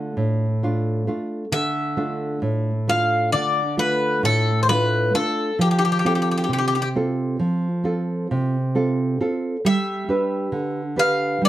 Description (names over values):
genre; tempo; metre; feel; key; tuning
greek folk; 133 BPM (eighths); 9/8; straight; D dorian; A4 = 440 Hz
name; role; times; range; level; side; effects
Greek bouzouki; melody; 0.0-11.5 s; G4 to F5; -21 LUFS; left 2 dB; none
nylon-string guitar; accompaniment; 0.0-11.5 s; A2 to B4; -21 LUFS; right 1 dB; none
room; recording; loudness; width
moderate studio reverb, RT60 0.6 s; dark, warm production; -19 LUFS; side -13 dB against mid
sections
0.0-1.5 A section; 1.5-11.5 B section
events
none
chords
0.0 Dm; 5.6 F; 9.6 G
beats
0.17 0.62 1.08 | 1.53 1.98 2.43 2.88 3.33 3.79 4.24 4.69 5.14 | 5.59 6.04 6.49 6.94 7.39 7.84 8.29 8.74 9.19 | 9.64 10.09 10.53 10.98 11.43